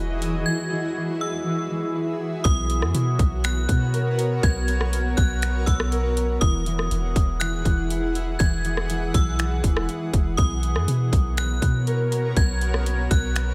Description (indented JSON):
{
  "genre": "hip hop, atmospheric cloud-rap",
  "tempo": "121 BPM",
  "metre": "4/4",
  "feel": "half-time",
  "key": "B major",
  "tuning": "A4 = 442 Hz",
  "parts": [
    { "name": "granular cloud pad", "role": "sustained chords", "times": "0.0-13.5 s", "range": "E3 to F#5", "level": "-32 LUFS", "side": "equal", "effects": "built-in reverb, sidechain pumping" },
    { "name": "concert harp", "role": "arpeggios", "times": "0.0-13.5 s", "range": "E3 to E6", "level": "-33 LUFS", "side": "equal", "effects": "tape echo" },
    { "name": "soft 808-style bass", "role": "bass", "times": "0.0-13.5 s", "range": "D#1 to B2", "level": "-26 LUFS", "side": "equal", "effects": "none" },
    { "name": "trap drum kit", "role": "drums", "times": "0.2-13.5 s", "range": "finger snaps, hi-hat, kick drum, rim click", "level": "-25 LUFS", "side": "equal", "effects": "none" },
    { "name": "metallic FM bell", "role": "melody", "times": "0.5-13.5 s", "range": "D#6 to G#6", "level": "-33 LUFS", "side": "equal", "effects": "chorus, tape echo" }
  ],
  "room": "little or no reverb",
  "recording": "none",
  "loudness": "-23 LUFS",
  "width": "mono",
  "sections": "0.0-2.4 A section; 2.4-13.5 B section",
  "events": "none",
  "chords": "0.0 Emaj7; 2.4 Bmaj7; 6.4 Emaj7; 10.4 Bmaj7"
}